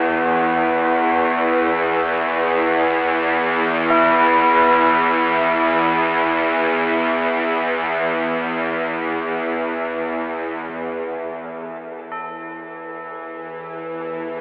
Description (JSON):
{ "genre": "dark ambient drone", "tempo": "free time", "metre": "none", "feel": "none", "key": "unclear", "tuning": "A4 = 439 Hz", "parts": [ { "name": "tubular bells", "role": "arpeggios", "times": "0.0-14.4 s", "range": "E4 to A4", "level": "-21 LUFS", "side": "equal", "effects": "diffuse ambient delay" }, { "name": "bowed-like drone", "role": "drone", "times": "0.0-14.4 s", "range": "E2 to E3", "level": "-18 LUFS", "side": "equal", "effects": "built-in reverb" }, { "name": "impact", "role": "percussion", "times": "10.7-10.9 s", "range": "none", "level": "barely audible", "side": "none", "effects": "none" }, { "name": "flickering grainy texture", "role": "texture", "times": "11.3-14.4 s", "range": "A4", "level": "-42 LUFS", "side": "equal", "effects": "none" } ], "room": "wet cathedral reverb, RT60 5.9 s", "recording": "in a vast, echoing space, telephone sound", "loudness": "-16 LUFS", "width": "side -29 dB against mid", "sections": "0.0-10.7 A section; 10.7-14.4 B section", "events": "fade-in on tubular bells 0.0-10.7", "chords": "0.0 Esus2; 10.7 N.C." }